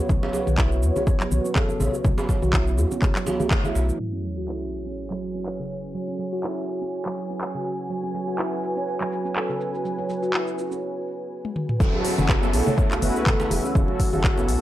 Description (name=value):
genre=afro house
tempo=123 BPM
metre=4/4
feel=swing 55% on 16ths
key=F# minor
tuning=A4 = 439 Hz
part: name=dark analog pad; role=sustained chords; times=0.0-14.6 s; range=B3 to E6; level=-31 LUFS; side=equal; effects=chorus, sidechain pumping
part: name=handpan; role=arpeggios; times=0.1-14.4 s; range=C#3 to F#4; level=-30 LUFS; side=right 2 dB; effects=sidechain pumping, low-pass filter, tape echo
part: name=warm sub bass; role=bass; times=0.1-3.9, 11.8-14.6 s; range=E1 to E2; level=-23 LUFS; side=equal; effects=sidechain pumping
part: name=afro-pop drum kit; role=drums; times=0.1-14.6 s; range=handclaps, hi-hat, shaker, toms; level=-29 LUFS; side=equal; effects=none
part: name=electronic kick drum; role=drums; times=0.1-3.6, 11.8-14.3 s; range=none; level=-22 LUFS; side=equal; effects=none
part: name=congas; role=percussion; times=0.1-3.7, 11.8-14.3 s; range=none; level=-30 LUFS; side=left 2 dB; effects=none
part: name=djembe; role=percussion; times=0.2-3.9, 11.9-14.5 s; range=none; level=-32 LUFS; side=right 2 dB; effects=none
part: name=breathy hollow bass bansuri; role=melody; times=1.0-3.5, 8.8-14.6 s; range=F#4 to C#5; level=-33 LUFS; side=left 1 dB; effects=tape echo
part: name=mellow synth brass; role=stabs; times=4.0-14.6 s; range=C#4 to B4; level=-32 LUFS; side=right 1 dB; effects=chorus, sidechain pumping, tape echo
part: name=sub drop and downlifter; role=sound effects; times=4.0-5.9, 11.8-14.6 s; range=none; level=-33 LUFS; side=equal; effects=none
room=light reverb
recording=dry, gritty hardware recording, low-pass filter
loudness=-22 LUFS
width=side -14 dB against mid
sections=0.0-4.0 A section; 4.0-11.8 B section; 11.8-14.6 C section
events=band accent 3.5; impact 4.0-5.9; filter sweep on handpan 4.0-11.8; filter sweep 4.0-11.8; break 10.8-11.8; drum fill 11.4-11.8; drop 11.8-14.6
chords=0.0 B5; 4.0 F#m7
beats=| 0.10 0.58 1.07 1.56 | 2.05 2.53 3.02 3.51 | 4.00 4.49 4.97 5.46 | 5.95 6.44 6.92 7.41 | 7.90 8.39 8.88 9.36 | 9.85 10.34 10.83 11.31 | 11.80 12.29 12.78 13.27 | 13.75 14.24